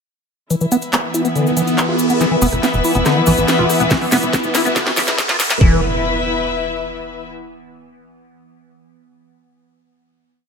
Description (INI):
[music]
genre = psychedelic trance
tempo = 141 BPM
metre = 4/4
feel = straight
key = unclear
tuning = A4 = 440 Hz
[part]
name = evolving wavetable pad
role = sustained chords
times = 1.0-5.7 s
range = E3 to B3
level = -21 LUFS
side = right 2 dB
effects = chorus, built-in reverb, sidechain pumping
[part]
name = liquid acid bass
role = riff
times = 0.5-5.8 s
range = D3 to F4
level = -20 LUFS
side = moving between left 4 dB and right 3 dB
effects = chorus, auto-pan, sidechain pumping, dub echo
[part]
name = drum and bass drum kit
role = drums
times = 0.5-5.6 s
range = handclaps, hi-hat, rim click, snare drum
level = -20 LUFS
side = equal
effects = none
[part]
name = cabasa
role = percussion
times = 0.5-5.6 s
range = none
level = -27 LUFS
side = left 5 dB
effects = none
[part]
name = riser and impact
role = sound effects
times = 1.2-7.3 s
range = none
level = -25 LUFS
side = right 1 dB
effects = none
[part]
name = rich studio string section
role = texture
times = 0.5-7.3 s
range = E4 to E5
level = -21 LUFS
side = left 4 dB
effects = sidechain pumping
[part]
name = tight sequencer bass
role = bass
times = 2.4-5.8 s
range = E1 to B1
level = -21 LUFS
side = equal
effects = none
[part]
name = electronic kick drum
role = drums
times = 3.9-5.7 s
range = none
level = -14 LUFS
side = equal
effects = none
[sound]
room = moderate lush hall reverb, RT60 1.6 s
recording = high-pass filter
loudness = -14 LUFS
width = side -5 dB against mid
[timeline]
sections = 0.5-2.2 intro; 2.2-5.6 build; 5.6-7.3 final chord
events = filter sweep on ambient pad 0.5-2.2; riser 1.2-2.2, 2.2-5.6; build-up 2.2-5.6; drum fill 2.2-5.6; filter sweep on acid bass 2.2-5.6; filter sweep 2.2-5.6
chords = 0.5 E5